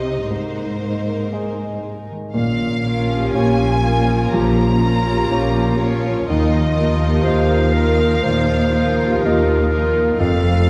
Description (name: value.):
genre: cinematic, emotional film score for orchestra.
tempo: 61 BPM.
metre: 4/4.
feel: rubato.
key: Bb dorian.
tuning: A4 = 440 Hz.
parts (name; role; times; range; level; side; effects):
rich studio violin section; melody; 0.0-10.7 s; C5 to Bb5; -28 LUFS; equal; none.
rich studio violin section; second line; 0.0-10.7 s; Eb4 to C5; -29 LUFS; equal; none.
warm grand piano; accompaniment; 0.0-10.7 s; C2 to Eb5; -26 LUFS; equal; none.
concert harp; arpeggios; 0.0-10.7 s; Ab2 to Ab5; -28 LUFS; equal; none.
rich studio cello section; bass; 0.0-10.7 s; Eb2 to C3; -25 LUFS; equal; none.
mellow French horn section; sustained chords; 2.3-10.7 s; A3 to F4; -29 LUFS; equal; none.
rich studio double bass section; bass; 2.3-10.7 s; F1 to Eb2; -24 LUFS; equal; none.
clear studio viola section; accompaniment; 2.8-10.7 s; C3 to Eb4; -32 LUFS; equal; none.
clear clarinet; second line; 4.3-10.7 s; F4 to C5; -25 LUFS; equal; none.
room: moderate scoring stage reverb, RT60 1.7 s.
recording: dark, warm production.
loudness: -18 LUFS.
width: mono.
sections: 0.0-2.4 A section; 2.4-10.7 A section.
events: none.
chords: 0.3 Abadd9; 2.4 Bbm; 6.3 Ebsus2; 10.2 F.